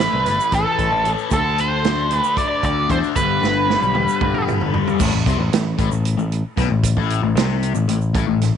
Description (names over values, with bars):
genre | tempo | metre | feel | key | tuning
psychedelic rock | 229 BPM (eighths) | 7/8 | straight | A minor | A4 = 440 Hz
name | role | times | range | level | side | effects
octave-fuzz lead guitar | melody | 0.0-4.4 s | A4 to D5 | -20 LUFS | right 2 dB | wah, distortion, tape echo
fuzz guitar | riff | 0.0-8.5 s | G2 to D4 | -22 LUFS | left 10 dB | distortion, phaser
picked electric bass | bass | 0.0-8.5 s | E1 to E2 | -22 LUFS | equal | none
vintage drum kit | drums | 0.0-8.5 s | crash cymbal, hi-hat, kick drum, snare drum, toms | -23 LUFS | right 4 dB | none
tube shaker | percussion | 0.4-8.1 s | none | -37 LUFS | right 17 dB | none
room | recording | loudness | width
light reverb, small room reverb | 1960s-style stereo with parts hard left and right, nothing above 10.9 kHz | -16 LUFS | side -8 dB against mid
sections
0.0-5.0 A section; 5.0-8.6 B section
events
drum fill 3.4-5.0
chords
0.0 A5; 1.3 D5; 3.2 G; 5.0 Am